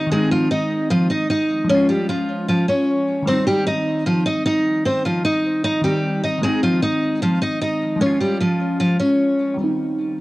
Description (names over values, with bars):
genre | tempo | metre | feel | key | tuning
hip hop | 152 BPM | 4/4 | half-time | C phrygian | A4 = 441 Hz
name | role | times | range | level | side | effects
picked steel-string acoustic guitar | melody | 0.0-9.6 s | F3 to Eb5 | -18 LUFS | equal | cassette tape
glassy digital keys | accompaniment | 0.0-10.2 s | Eb3 to F4 | -22 LUFS | equal | chorus, low-pass filter, cassette tape
room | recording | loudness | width
moderate studio reverb, RT60 0.6 s | home recording on cassette | -17 LUFS | side -19 dB against mid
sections
0.0-9.6 A section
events
none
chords
0.1 Ab; 1.7 Db; 3.3 Cm; 6.4 Ab; 8.0 Db; 9.6 Cm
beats
| 0.12 0.51 0.91 1.30 | 1.70 2.09 2.48 2.88 | 3.27 3.67 4.06 4.46 | 4.85 5.25 5.64 6.04 | 6.43 6.83 7.22 7.62 | 8.01 8.40 8.80 9.20 | 9.59 9.98